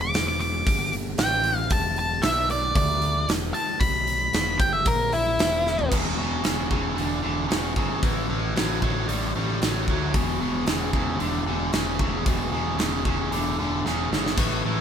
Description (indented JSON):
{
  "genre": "blues rock power trio and southern rock",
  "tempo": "114 BPM",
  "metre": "4/4",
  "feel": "straight",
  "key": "E minor",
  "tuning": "A4 = 440 Hz",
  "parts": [
    { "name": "octave-fuzz lead guitar", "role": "melody", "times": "0.0-5.9 s", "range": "E4 to D6", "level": "-24 LUFS", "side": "equal", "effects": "distortion" },
    { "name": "growling picked electric bass", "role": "bass", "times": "0.0-14.8 s", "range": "E1 to D2", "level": "-29 LUFS", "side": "equal", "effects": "overdrive" },
    { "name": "huge arena drum kit", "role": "drums", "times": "0.1-14.5 s", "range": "crash cymbal, hi-hat, kick drum, snare drum, toms", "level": "-26 LUFS", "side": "equal", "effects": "none" },
    { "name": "biting overdriven guitar", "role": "riff", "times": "5.9-14.8 s", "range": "E2 to G3", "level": "-26 LUFS", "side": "equal", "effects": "none" }
  ],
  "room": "light reverb",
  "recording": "band playing live in one room",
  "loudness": "-22 LUFS",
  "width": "side -8 dB against mid",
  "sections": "0.0-5.9 A section; 5.9-14.8 B section",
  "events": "lead electric guitar solo 0.0-5.9; drum fill 5.7, 13.9-14.4",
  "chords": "0.0 E7(no3); 0.7 G5; 1.2 Gsus2/A; 1.7 Esus4; 2.2 Bmadd11; 2.8 N.C.; 3.3 Esus4; 3.8 N.C.; 4.3 Em; 4.9 N.C.; 5.9 E5; 8.0 A5; 10.1 E5"
}